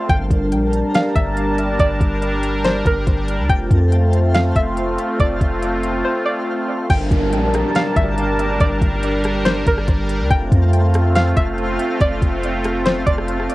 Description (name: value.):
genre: hip hop, atmospheric cloud-rap.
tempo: 141 BPM.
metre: 4/4.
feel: half-time.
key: G minor.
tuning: A4 = 440 Hz.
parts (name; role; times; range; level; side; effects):
sweeping resonant pad; sustained chords; 0.0-13.5 s; G3 to A5; -20 LUFS; equal; chorus, sidechain pumping, cassette tape.
twinkling granular texture; texture; 0.0-13.5 s; Bb3 to A5; -32 LUFS; left 1 dB; built-in reverb, cassette tape.
string-like resonator pluck; melody; 0.1-13.3 s; Bb4 to G5; -23 LUFS; equal; chorus, low-pass filter, cassette tape, tape echo.
soft 808-style bass; bass; 0.1-13.5 s; F1 to F2; -20 LUFS; equal; none.
smooth R&B drum kit; drums; 0.1-13.5 s; crash cymbal, hi-hat, kick drum, rim click, snare drum; -19 LUFS; equal; cassette tape.
downlifter; sound effects; 6.9-10.3 s; none; -29 LUFS; left 1 dB; none.
room: light reverb, digital ambience.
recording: home recording on cassette.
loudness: -15 LUFS.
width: side -18 dB against mid.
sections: 0.0-6.9 A section; 6.9-13.5 B section.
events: break 6.0-6.9.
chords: 0.1 Gmadd9; 3.5 F; 6.9 Gmadd9; 10.3 F.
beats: | 0.09 0.52 0.94 1.37 | 1.79 2.22 2.65 3.07 | 3.50 3.92 4.35 4.77 | 5.20 5.62 6.05 6.47 | 6.90 7.33 7.75 8.18 | 8.60 9.03 9.45 9.88 | 10.30 10.73 11.16 11.58 | 12.01 12.43 12.86 13.28.